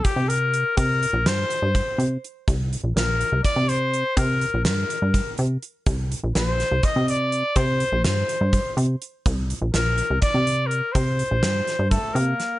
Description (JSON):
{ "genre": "progressive instrumental, band music in an uneven meter", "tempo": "248 BPM (eighths)", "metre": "7/8", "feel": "straight", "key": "unclear", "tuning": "A4 = 440 Hz", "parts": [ { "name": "clear trumpet", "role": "melody", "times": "0.0-12.6 s", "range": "G4 to Eb5", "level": "-24 LUFS", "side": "left 2 dB", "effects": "none" }, { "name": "plucky analog bass", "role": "bass", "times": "0.0-12.3 s", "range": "Bb1 to C3", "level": "-22 LUFS", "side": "equal", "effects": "none" }, { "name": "gated 80s drum kit", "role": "drums", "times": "0.0-12.5 s", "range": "hi-hat, kick drum, snare drum", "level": "-25 LUFS", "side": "equal", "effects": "none" }, { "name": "mellow flugelhorn", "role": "second line", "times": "11.9-12.6 s", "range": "A3 to Bb3", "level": "-31 LUFS", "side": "right 1 dB", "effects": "none" } ], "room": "small room ambience", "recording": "nothing above 10.6 kHz", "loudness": "-20 LUFS", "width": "side -16 dB against mid", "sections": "0.0-12.6 A section", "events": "none", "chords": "0.0 C5" }